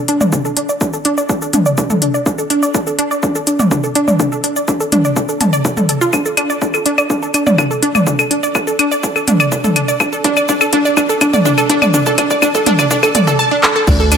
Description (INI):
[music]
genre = melodic techno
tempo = 124 BPM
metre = 4/4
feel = straight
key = unclear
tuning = A4 = 437 Hz
[part]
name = wide unison pluck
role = arpeggios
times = 0.0-14.2 s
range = D4 to A5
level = -14 LUFS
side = right 1 dB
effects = sidechain pumping, dub echo
[part]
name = techno drum kit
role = drums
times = 0.1-14.2 s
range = claves, crash cymbal, handclaps, hi-hat, shaker, toms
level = -15 LUFS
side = left 1 dB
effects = none
[part]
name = electronic kick drum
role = drums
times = 0.3-14.0 s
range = none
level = -20 LUFS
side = equal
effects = high-pass filter on kick, high-pass filter on room
[part]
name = round analog bass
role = bass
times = 13.9-14.2 s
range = D2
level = -12 LUFS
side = equal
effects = sidechain pumping
[sound]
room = moderate lush hall reverb, RT60 1.8 s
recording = none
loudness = -12 LUFS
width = side -7 dB against mid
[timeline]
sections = 0.0-13.9 A section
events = build-up 0.0-13.9; filter sweep on synth arpeggio sound 0.0-13.9; drum fill 6.1-13.4, 13.6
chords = 0.0 D5